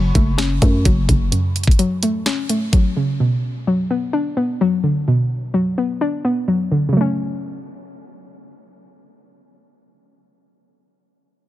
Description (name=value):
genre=hip hop, trap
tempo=128 BPM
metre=4/4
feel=half-time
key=F# minor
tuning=A4 = 441 Hz
part: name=hollow square pluck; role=accompaniment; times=0.0-10.8 s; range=F#2 to D4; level=-18 LUFS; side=left 1 dB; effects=chorus, low-pass filter
part: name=growling 808-style bass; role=bass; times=0.0-1.3 s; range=F#1 to F#2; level=-18 LUFS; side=equal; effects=none
part: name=trap drum kit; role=drums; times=0.2-2.8 s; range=hi-hat, kick drum, snare drum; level=-17 LUFS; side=equal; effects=vintage 12-bit sampler grit
room=little or no reverb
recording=dense, heavily limited modern master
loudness=-16 LUFS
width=side -14 dB against mid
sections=0.0-6.9 A section; 6.9-10.7 B section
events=none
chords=0.0 F#m; 3.2 Bm; 6.9 F#m